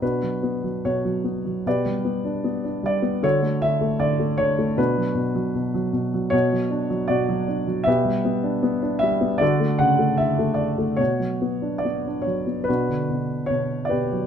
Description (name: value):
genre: classical, lyrical solo piano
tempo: 70-78 BPM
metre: 4/4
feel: rubato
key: B minor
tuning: A4 = 440 Hz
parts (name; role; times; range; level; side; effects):
- warm concert grand piano; solo; 0.0-14.3 s; B2 to F#5; -20 LUFS; equal; none
room: light reverb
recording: close, detailed microphones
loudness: -20 LUFS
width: side -8 dB against mid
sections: 0.0-14.3 A section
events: none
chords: 0.0 Bmadd9; 1.7 G/B; 3.2 D; 4.8 Bm; 7.9 G/B; 9.4 Dmaj7; 11.0 Bmadd9; 12.7 Bm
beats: | 0.02 0.84 1.66 2.46 | 3.24 4.01 4.79 5.56 | 6.33 7.10 7.87 8.64 | 9.41 10.20 11.00 11.84 | 12.68 13.50